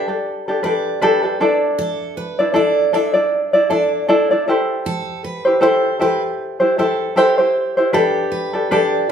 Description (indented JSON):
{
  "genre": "acoustic pop",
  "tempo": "78 BPM",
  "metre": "4/4",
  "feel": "swing 55% on 16ths",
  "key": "G major",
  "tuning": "A4 = 440 Hz",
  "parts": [
    { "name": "tenor ukulele", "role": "accompaniment", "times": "0.0-9.1 s", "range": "D4 to D5", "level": "-15 LUFS", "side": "equal", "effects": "none" },
    { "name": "picked steel-string acoustic guitar", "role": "arpeggios", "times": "0.0-9.1 s", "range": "G4 to E5", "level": "-25 LUFS", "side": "right 5 dB", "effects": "none" }
  ],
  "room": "moderate large studio reverb, RT60 1.1 s",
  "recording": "band playing live in one room",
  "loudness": "-15 LUFS",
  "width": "side -8 dB against mid",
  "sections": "0.0-9.1 A section",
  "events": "none",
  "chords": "0.0 Gadd9; 1.4 Dsus2; 4.5 Am7; 7.9 Gadd9",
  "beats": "0.24 1.01 | 1.78 2.55 3.32 4.09 | 4.86 5.63 6.40 7.17 | 7.94 8.71"
}